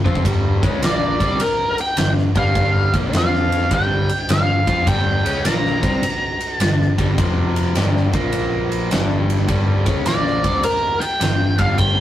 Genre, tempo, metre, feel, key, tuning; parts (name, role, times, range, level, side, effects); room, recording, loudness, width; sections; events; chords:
blues rock power trio and southern rock; 104 BPM; 4/4; swing 66% on 8ths; G minor; A4 = 440 Hz
overdriven electric guitar; riff; 0.0-12.0 s; F2 to F4; -23 LUFS; equal
overdriven picked electric bass; bass; 0.0-12.0 s; F1 to F2; -21 LUFS; equal
huge arena drum kit; drums; 0.1-12.0 s; kick drum, ride cymbal, snare drum; -20 LUFS; equal
octave-fuzz lead guitar; melody; 0.9-12.0 s; Bb4 to Bb5; -20 LUFS; equal; wah, distortion
moderate stone room reverb, RT60 1.0 s; rough rehearsal-room recording, tube saturation; -16 LUFS; side -12 dB against mid
0.0-12.0 A section
drum fill 0.0
0.0 Gm; 3.1 F5; 3.7 Gm; 7.2 F5; 7.8 G5; 8.0 Bb5; 8.9 Gm